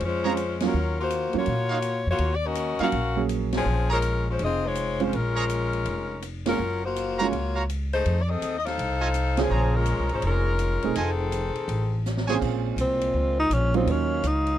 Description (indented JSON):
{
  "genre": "jazz, big band swing",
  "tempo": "164 BPM",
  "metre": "4/4",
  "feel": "swing 64% on 8ths",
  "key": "Bb minor",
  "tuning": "A4 = 441 Hz",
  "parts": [
    { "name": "edgy saxophone section", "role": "melody", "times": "0.0-12.1 s", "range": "Eb3 to F5", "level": "-27 LUFS", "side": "left 4 dB", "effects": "none" },
    { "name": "upright bass", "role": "bass", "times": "0.0-14.6 s", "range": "E1 to Bb2", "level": "-27 LUFS", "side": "equal", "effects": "none" },
    { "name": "swinging big-band drum kit", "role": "drums", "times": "0.0-14.5 s", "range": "crash cymbal, hi-hat, kick drum, ride cymbal, snare drum", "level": "-38 LUFS", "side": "equal", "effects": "none" },
    { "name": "warm grand piano", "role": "accompaniment", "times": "0.2-14.2 s", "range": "Bb2 to C5", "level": "-27 LUFS", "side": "right 10 dB", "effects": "none" },
    { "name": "bright trumpet section", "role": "stabs", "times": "0.2-12.4 s", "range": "Eb4 to Bb5", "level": "-28 LUFS", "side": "right 4 dB", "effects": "none" },
    { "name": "dark saxophone section", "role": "sustained chords", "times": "12.4-14.6 s", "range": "Bb2 to Db5", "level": "-35 LUFS", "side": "left 6 dB", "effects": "none" },
    { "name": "warm tenor saxophone", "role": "melody", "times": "12.8-14.6 s", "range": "C4 to Eb4", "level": "-24 LUFS", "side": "equal", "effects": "none" }
  ],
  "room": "little or no reverb",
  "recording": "none",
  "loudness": "-23 LUFS",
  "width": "side -12 dB against mid",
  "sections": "0.0-12.4 A section; 12.4-14.6 B section",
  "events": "band accent 0.6, 3.5, 6.4, 9.3; drum fill 12.1-12.4; tenor saxophone solo 12.4-14.6",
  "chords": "0.0 Bbm9; 0.7 Ebm9; 3.7 Bbm9; 6.6 Gbmaj7; 8.0 F7#9; 9.5 Bbm9; 11.0 F7#9; 12.4 Bbm9; 13.9 Ebm9",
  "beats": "0.01 0.38 | 0.74 1.11 1.47 1.84 | 2.20 2.57 2.94 3.30 | 3.67 4.03 4.40 4.76 | 5.13 5.49 5.86 6.22 | 6.59 6.95 7.32 7.68 | 8.05 8.41 8.78 9.14 | 9.51 9.87 10.23 10.60 | 10.96 11.33 11.69 12.06 | 12.42 12.79 13.15 13.52 | 13.88 14.25"
}